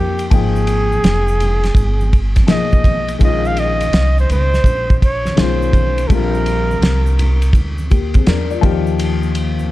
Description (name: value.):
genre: hip hop, jazz-hop.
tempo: 83 BPM.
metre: 4/4.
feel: swing 65% on 16ths.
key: Bb dorian.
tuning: A4 = 439 Hz.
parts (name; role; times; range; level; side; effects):
mellow flugelhorn; melody; 0.0-7.6 s; G4 to F5; -20 LUFS; right 1 dB; none.
dark concert grand piano; accompaniment; 0.0-9.7 s; D3 to G5; -21 LUFS; left 9 dB; none.
upright bass; bass; 0.0-9.7 s; F1 to F2; -17 LUFS; equal; none.
cloth-damped thuddy drum kit; drums; 0.2-9.6 s; hi-hat, kick drum, ride cymbal, snare drum; -16 LUFS; equal; vintage 12-bit sampler grit.
tube shaker and congas; percussion; 0.2-9.7 s; none; -29 LUFS; right 2 dB; none.
room: small room ambience.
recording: dark, warm production.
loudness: -12 LUFS.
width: side -16 dB against mid.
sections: 0.0-9.7 A section.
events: none.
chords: 0.3 Absus2; 3.2 Bbm11; 6.1 Bb; 8.6 Eb.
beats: | 0.32 1.04 1.77 2.49 | 3.21 3.94 4.66 5.38 | 6.10 6.83 7.55 8.27 | 8.99.